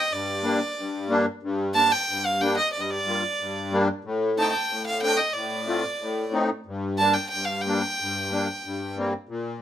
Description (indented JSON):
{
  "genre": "klezmer",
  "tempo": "92 BPM",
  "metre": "2/4",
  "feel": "straight",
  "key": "G minor",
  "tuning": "A4 = 441 Hz",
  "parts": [
    { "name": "clear violin", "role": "melody", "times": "0.0-8.9 s", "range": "D5 to A5", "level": "-24 LUFS", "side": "right 2 dB", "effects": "none" },
    { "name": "musette accordion", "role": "accompaniment", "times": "0.1-9.6 s", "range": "G2 to F4", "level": "-26 LUFS", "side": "left 2 dB", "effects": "none" }
  ],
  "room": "moderate studio reverb, RT60 0.6 s",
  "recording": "minimal, uncompressed stereo recording",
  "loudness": "-23 LUFS",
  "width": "side -10 dB against mid",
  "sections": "0.0-9.3 A section",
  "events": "none",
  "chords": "0.0 Gm; 4.0 Adim; 6.7 Gm"
}